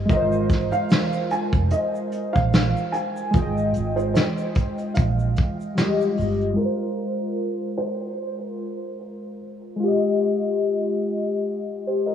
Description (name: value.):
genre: lo-fi hip hop.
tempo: 74 BPM.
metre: 4/4.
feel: swing 56% on 16ths.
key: unclear.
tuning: A4 = 442 Hz.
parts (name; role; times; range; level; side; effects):
warbly lo-fi synth keys; accompaniment; 0.0-12.1 s; G3 to G5; -24 LUFS; left 2 dB; chorus, cassette tape, low-pass filter.
vintage muted fingered electric bass; bass; 0.0-6.5 s; F1 to Bb1; -23 LUFS; right 2 dB; none.
felt-muted upright piano; melody; 0.1-9.4 s; Ab4 to Ab5; -28 LUFS; right 1 dB; lush chorus, low-pass filter, analog delay.
vintage brush drum kit; drums; 0.1-6.4 s; hi-hat, kick drum, snare drum; -22 LUFS; equal; none.
tube shaker; percussion; 0.1-6.6 s; none; -56 LUFS; right 6 dB; none.
room: moderate plate reverb, RT60 2.9 s.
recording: dreamy mix soaked in reverb, cassette tape, low-pass filter.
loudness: -20 LUFS.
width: side -9 dB against mid.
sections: 0.0-6.6 A section; 6.6-12.1 B section.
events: none.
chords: 0.1 Ab69; 3.3 Fm7/Ab; 6.6 Ab69; 9.8 Fm7/Ab.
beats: | 0.10 0.91 1.72 2.53 | 3.34 4.15 4.96 5.77 | 6.58 7.39 8.21 9.02 | 9.83 10.64 11.45.